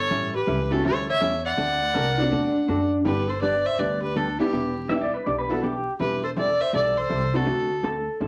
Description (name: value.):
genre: country.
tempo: 163 BPM.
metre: 4/4.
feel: swing 64% on 8ths.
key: G major.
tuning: A4 = 440 Hz.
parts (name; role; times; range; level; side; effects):
warm fiddle; melody; 0.0-7.9 s; G4 to F#5; -28 LUFS; equal; none.
breathy clarinet; second line; 0.0-7.8 s; D4 to D5; -32 LUFS; equal; none.
upright bass; bass; 0.0-8.3 s; E1 to F#2; -33 LUFS; equal; none.
hollow-body jazz guitar; accompaniment; 0.1-8.3 s; D3 to A4; -32 LUFS; equal; none.
tack piano; accompaniment; 0.7-7.5 s; D3 to G4; -30 LUFS; equal; none.
pedal steel guitar; second line; 1.9-8.3 s; D4 to E5; -28 LUFS; equal; none.
room: wet small room reverb, RT60 0.6 s.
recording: vinyl crackle.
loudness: -24 LUFS.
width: mono.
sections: 0.0-3.1 A section; 3.1-8.3 B section.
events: none.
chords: 0.1 A7; 1.6 D7; 3.1 G; 4.5 Em7; 6.0 C6/E; 7.5 D7.